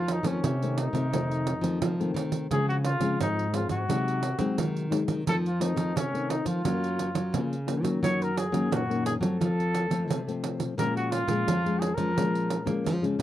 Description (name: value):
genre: samba and choro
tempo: 87 BPM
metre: 4/4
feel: straight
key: unclear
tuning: A4 = 441 Hz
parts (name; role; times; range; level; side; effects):
- dark trumpet; melody; 0.0-12.8 s; Db4 to Db5; -31 LUFS; equal; none
- nylon-string guitar; accompaniment; 0.0-13.2 s; F2 to Eb4; -31 LUFS; left 4 dB; none
- nylon-string guitar; bass; 0.0-13.2 s; Ab2 to C4; -29 LUFS; equal; none
- pandeiro; percussion; 0.1-13.2 s; none; -32 LUFS; right 6 dB; none
room: light reverb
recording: dry, close 1970s-style studio recording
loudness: -25 LUFS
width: side -13 dB against mid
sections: 0.0-13.2 A section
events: none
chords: 0.0 F7; 2.5 Dbmaj7; 3.9 Ab7/C; 5.3 F7; 6.7 Gbmaj7; 8.0 Ebm7/Gb; 9.4 F; 10.8 Bbm7